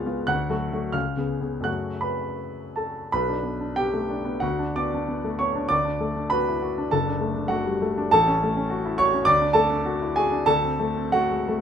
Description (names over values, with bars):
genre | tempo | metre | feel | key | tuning
classical, romantic character piece for solo piano | 79-104 BPM | 2/4 | rubato | F# minor, B minor from 3.1 s | A4 = 440 Hz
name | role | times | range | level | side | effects
warm baby grand piano | solo | 0.0-11.6 s | F#1 to F#6 | -22 LUFS | equal | none
room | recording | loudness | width
light reverb | minimal, uncompressed stereo recording | -22 LUFS | side -8 dB against mid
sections
0.0-3.1 A section; 3.1-11.6 B section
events
none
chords
0.3 D; 0.9 C#7; 1.7 F#m; 3.1 Bm; 4.4 Bm/D; 5.7 D; 6.9 D/F#; 8.1 F#m/A; 9.3 D; 10.5 D7